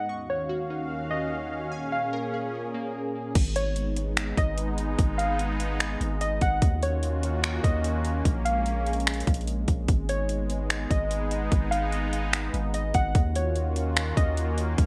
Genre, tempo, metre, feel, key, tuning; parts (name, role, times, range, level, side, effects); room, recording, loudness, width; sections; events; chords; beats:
hip hop, atmospheric cloud-rap; 147 BPM; 4/4; half-time; G# dorian; A4 = 440 Hz
warbly dusty pluck; melody; 0.0-14.4 s; C#5 to F#5; -34 LUFS; equal; chorus, low-pass filter, digital delay
sweeping resonant pad; sustained chords; 0.0-14.9 s; D#2 to E#5; -34 LUFS; equal; chorus, sidechain pumping
glassy digital keys; arpeggios; 0.0-3.4 s; D#3 to C#6; -40 LUFS; equal; chorus, low-pass filter, digital delay
long sustained 808-style bass; bass; 3.4-14.9 s; G#1 to D#2; -31 LUFS; equal
trap drum kit; drums; 3.4-14.9 s; crash cymbal, finger snaps, hi-hat, kick drum; -28 LUFS; equal; gated reverb
light reverb, digital ambience; bright 1980s-style digital production; -27 LUFS; mono
0.0-3.4 A section; 3.4-14.9 B section
0.1 D#m7; 1.7 A#m7; 3.4 G#m; 6.6 D#m7; 8.3 A#m7; 9.9 G#m; 13.2 D#m7
| 0.09 0.50 0.91 1.31 | 1.72 2.13 2.54 2.95 | 3.35 3.76 4.17 4.58 | 4.99 5.39 5.80 6.21 | 6.62 7.03 7.44 7.84 | 8.25 8.66 9.07 9.48 | 9.88 10.29 10.70 11.11 | 11.52 11.93 12.33 12.74 | 13.15 13.56 13.97 14.37 | 14.78